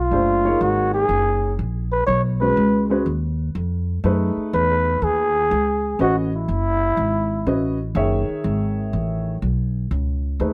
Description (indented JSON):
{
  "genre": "modal jazz",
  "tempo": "122 BPM",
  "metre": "4/4",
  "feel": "swing 67% on 8ths",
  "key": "F# dorian from 4.0 s",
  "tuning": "A4 = 440 Hz",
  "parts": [
    { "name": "trumpet with bucket mute", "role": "melody", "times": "0.0-7.8 s", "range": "E4 to C#5", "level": "-22 LUFS", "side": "equal", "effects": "plate reverb" },
    { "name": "upright bass", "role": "bass", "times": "0.0-10.5 s", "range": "F#1 to F#2", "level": "-24 LUFS", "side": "equal", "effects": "none" },
    { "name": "warm upright piano", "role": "accompaniment", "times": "0.1-10.5 s", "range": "D#3 to E5", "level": "-26 LUFS", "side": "equal", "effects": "none" }
  ],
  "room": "light reverb",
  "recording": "none",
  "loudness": "-21 LUFS",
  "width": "mono",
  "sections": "0.0-4.0 A section; 4.0-10.5 B section",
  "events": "none",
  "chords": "0.0 B; 4.0 F#m11"
}